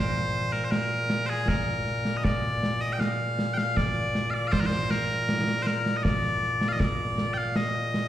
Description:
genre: scottish traditional, Scottish pipe music.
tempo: 79 BPM.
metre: 3/4.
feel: straight.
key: Bb major.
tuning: A4 = 440 Hz.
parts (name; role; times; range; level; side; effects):
loud bright bagpipes; melody; 0.0-8.1 s; Bb2 to G5; -26 LUFS; equal; plate reverb, slapback echo.
concert snare drum and concert bass drum; drums; 0.2-8.1 s; none; -28 LUFS; right 1 dB; none.
room: light reverb.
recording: live gig heard through the venue's PA, recital hall reverb.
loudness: -24 LUFS.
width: side -12 dB against mid.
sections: 0.0-8.1 A section.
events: none.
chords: none.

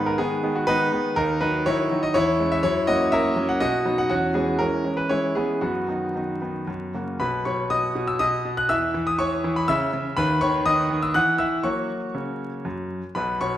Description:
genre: classical-period piano sonatina.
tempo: 121 BPM.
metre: 3/4.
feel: rubato.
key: B major.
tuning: A4 = 438 Hz.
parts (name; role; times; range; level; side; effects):
bright concert grand piano; solo; 0.0-13.6 s; B1 to F#6; -21 LUFS; equal; none.
room: wet recital hall reverb, RT60 1.6 s.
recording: minimal, uncompressed stereo recording, vinyl crackle.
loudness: -21 LUFS.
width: side -12 dB against mid.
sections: 0.0-7.2 A section; 7.2-13.6 B section.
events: none.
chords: 0.0 G#m; 1.2 D#m7; 2.1 C#m/E; 2.6 F#7; 3.6 B; 4.1 C#m/E; 5.6 B/F#; 6.7 F#; 7.2 B; 8.7 C#m9/E; 9.7 C#m; 10.2 B/D#; 11.2 Esus2; 11.7 F#.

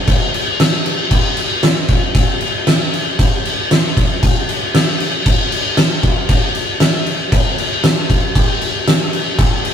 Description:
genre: rock.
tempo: 116 BPM.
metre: 4/4.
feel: straight.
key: none.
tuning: none.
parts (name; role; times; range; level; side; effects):
oversized low-tuned drum kit; drums; 0.1-9.7 s; crash cymbal, kick drum, snare drum; -13 LUFS; equal; none.
room: light reverb.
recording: rough rehearsal-room recording.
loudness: -13 LUFS.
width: side -8 dB against mid.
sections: 0.0-9.7 A section.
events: none.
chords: none.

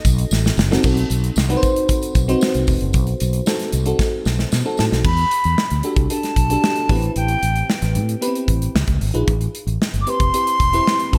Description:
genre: polished 1980s jazz-funk pop.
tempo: 114 BPM.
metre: 4/4.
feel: straight.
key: E minor from 5.0 s.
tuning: A4 = 440 Hz.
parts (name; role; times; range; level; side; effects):
breathy silver concert flute; melody; 0.0-0.3, 4.8-11.2 s; D#5 to D6; -23 LUFS; equal; none.
bell-like FM electric piano; accompaniment; 0.0-11.2 s; B3 to C5; -25 LUFS; equal; lush chorus.
modern studio drum kit; drums; 0.0-11.2 s; crash cymbal, hi-hat, kick drum, snare drum; -23 LUFS; equal; gated reverb.
tambourine; percussion; 0.0-4.9 s; none; -36 LUFS; equal; none.
mellow fretless electric bass; bass; 0.1-11.2 s; E1 to B2; -22 LUFS; equal; none.
room: light reverb, small room ambience.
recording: bright 1980s-style digital production.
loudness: -18 LUFS.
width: mono.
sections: 0.8-5.0 A section; 5.0-11.2 B section.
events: drum fill 0.3-0.8, 4.0-5.0.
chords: 0.0 B7b9; 5.0 Em11; 6.9 Am9; 8.7 C#9; 9.3 Am7.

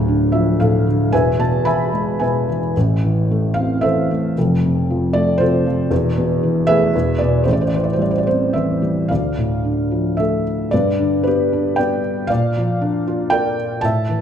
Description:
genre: classical, lyrical solo piano.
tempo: 114 BPM.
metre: 3/4.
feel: rubato.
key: A minor.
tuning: A4 = 439 Hz.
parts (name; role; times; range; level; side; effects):
felt-muted upright piano; solo; 0.0-14.2 s; D1 to B5; -15 LUFS; equal; none.
room: moderate concert hall reverb, RT60 2.3 s.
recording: minimal, uncompressed stereo recording.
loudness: -15 LUFS.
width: side -8 dB against mid.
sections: 0.0-9.1 A section; 9.1-14.2 B section.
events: none.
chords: 0.0 Dm; 1.1 E; 2.8 Am; 4.4 F; 5.9 Esus4; 6.9 E; 7.5 Am7; 9.1 Dmadd9; 10.7 G; 12.3 Bb.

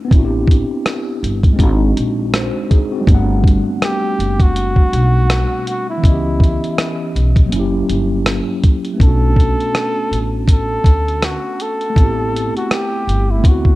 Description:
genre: lo-fi hip hop.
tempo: 81 BPM.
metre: 4/4.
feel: swing 56% on 16ths.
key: B minor.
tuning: A4 = 440 Hz.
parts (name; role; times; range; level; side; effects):
mellow tine electric piano; accompaniment; 0.0-13.8 s; E3 to F#5; -20 LUFS; equal; medium stereo tremolo, cassette tape.
upright bass; bass; 0.1-13.8 s; F#1 to D2; -18 LUFS; equal; none.
lo-fi sampler-style drum kit; drums; 0.1-13.8 s; hi-hat, kick drum, rim click; -13 LUFS; equal; none.
breathy flugelhorn; melody; 3.8-13.8 s; E4 to A4; -21 LUFS; equal; none.
room: digital ambience.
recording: dark, warm production.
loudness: -13 LUFS.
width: side -18 dB against mid.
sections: 0.0-9.0 A section; 9.0-13.8 B section.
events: none.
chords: 0.1 Am11; 1.6 G#7#11; 3.1 Gmaj7; 6.0 C#m7b5; 7.5 F#7b9; 9.0 Bm9; 12.0 Am7.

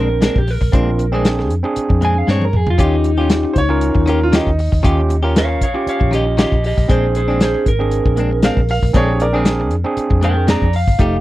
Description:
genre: straight-eighth soul blues.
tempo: 117 BPM.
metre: 4/4.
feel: swing 54% on 16ths.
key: Bb mixolydian.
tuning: A4 = 440 Hz.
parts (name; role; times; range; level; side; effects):
electric guitar through a small old amp; melody; 0.0-11.2 s; Eb4 to Bb5; -21 LUFS; equal; none.
overdriven tine electric piano; accompaniment; 0.0-11.2 s; A3 to Bb4; -20 LUFS; right 3 dB; none.
direct-recorded clean electric guitar; stabs; 0.0-11.2 s; Bb2 to G4; -22 LUFS; left 4 dB; none.
vintage muted fingered electric bass; bass; 0.0-11.2 s; F1 to G2; -18 LUFS; equal; none.
warm soul drum kit; drums; 0.2-11.1 s; hi-hat, kick drum, snare drum, toms; -16 LUFS; equal; none.
bright upright piano; second line; 3.5-5.2, 8.4-9.7 s; Eb4 to F5; -21 LUFS; right 2 dB; none.
room: little or no reverb.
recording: dry, close 1970s-style studio recording.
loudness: -13 LUFS.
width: side -16 dB against mid.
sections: 0.0-11.2 A section.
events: drum fill 2.3-2.8.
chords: 0.0 Bb9; 2.8 Eb9; 6.9 Bb9.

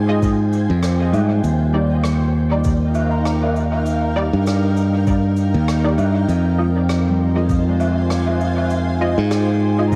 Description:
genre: ambient dub.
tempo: 99 BPM.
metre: 4/4.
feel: swing 56% on 16ths.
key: F dorian.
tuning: A4 = 439 Hz.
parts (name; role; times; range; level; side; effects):
granular cloud pad; sustained chords; 0.0-10.0 s; Eb4 to Ab5; -28 LUFS; equal; built-in reverb.
modern bright fingered electric bass; bass; 0.0-10.0 s; Eb2 to Ab2; -19 LUFS; equal; none.
filtered dub chord stab; stabs; 0.1-9.9 s; G3 to Eb5; -29 LUFS; equal; ensemble chorus, cassette tape, dub echo.
cabasa, rim click and woodblock; drums; 0.2-10.0 s; none; -31 LUFS; equal; studio reverb, cassette tape, dub echo.
electronic kick drum; drums; 0.2-10.0 s; none; -23 LUFS; equal; studio reverb, cassette tape.
concert harp; arpeggios; 1.1-10.0 s; G3 to Bb5; -33 LUFS; equal; none.
room: light reverb, small room ambience.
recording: home recording on cassette.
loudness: -18 LUFS.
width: mono.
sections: 0.0-10.0 A section.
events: none.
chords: 0.0 Fm; 1.4 Ebmaj7; 6.3 Fm7.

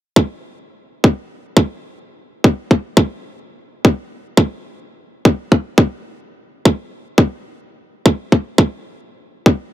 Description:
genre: drum and bass.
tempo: 171 BPM.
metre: 4/4.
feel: straight.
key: none.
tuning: none.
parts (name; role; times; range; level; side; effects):
electronic kick drum; drums; 0.2-9.5 s; none; -10 LUFS; equal; high-pass filter on kick, high-pass filter on room.
room: little or no reverb.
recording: dark, warm production.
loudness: -14 LUFS.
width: side -14 dB against mid.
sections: 0.2-9.7 A section.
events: none.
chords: none.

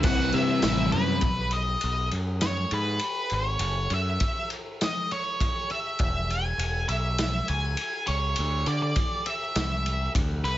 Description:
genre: quiet-loud alternative rock.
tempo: 101 BPM.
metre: 4/4.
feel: straight.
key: unclear.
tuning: A4 = 441 Hz.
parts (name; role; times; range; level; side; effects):
octave-fuzz lead guitar; melody; 0.0-10.6 s; B4 to G#5; -29 LUFS; equal; distortion, plate reverb.
fuzz guitar; riff; 0.0-1.2 s; C3 to E4; -28 LUFS; equal; distortion.
thick fuzz guitar; riff; 0.0-1.2 s; C3 to C4; -31 LUFS; left 3 dB; none.
growling picked electric bass; bass; 0.0-10.6 s; E1 to D3; -28 LUFS; equal; overdrive.
raw garage drum kit; drums; 0.0-10.6 s; crash cymbal, kick drum, ride cymbal, snare drum; -30 LUFS; equal; none.
room: light reverb.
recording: nothing above 7.7 kHz.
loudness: -24 LUFS.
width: side -13 dB against mid.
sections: 0.0-1.2 A section; 1.2-10.6 B section.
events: half time 1.2-10.6.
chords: 0.0 C; 1.2 B; 3.6 F#5; 6.0 E; 8.4 Dsus2; 9.6 C.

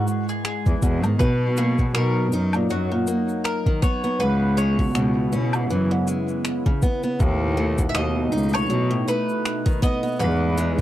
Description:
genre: folktronica.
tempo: 80 BPM.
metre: 4/4.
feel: swing 56% on 16ths.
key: B major.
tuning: A4 = 440 Hz.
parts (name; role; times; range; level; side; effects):
bowl-back mandolin; melody; 0.0-10.8 s; F#4 to E5; -28 LUFS; equal; tape echo.
warbly tape-like pad; sustained chords; 0.0-10.8 s; B2 to E4; -29 LUFS; right 1 dB; chorus, built-in reverb.
picked old ladder-braced acoustic guitar; arpeggios; 0.0-10.8 s; G#2 to D#4; -26 LUFS; equal; tape echo.
electronic cabasa, finger snaps and woodblock; drums; 0.1-10.8 s; none; -30 LUFS; left 2 dB; overdrive.
clear cello; bass; 0.7-10.8 s; C#2 to B2; -23 LUFS; equal; none.
electronic kick drum; drums; 0.7-10.8 s; none; -21 LUFS; equal; overdrive.
room: little or no reverb.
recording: dry, close 1970s-style studio recording.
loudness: -19 LUFS.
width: side -13 dB against mid.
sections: 0.0-10.8 A section.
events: none.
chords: 0.0 Emaj7; 1.2 Bmaj7; 4.2 C#m7; 7.2 B7; 10.2 Emaj7.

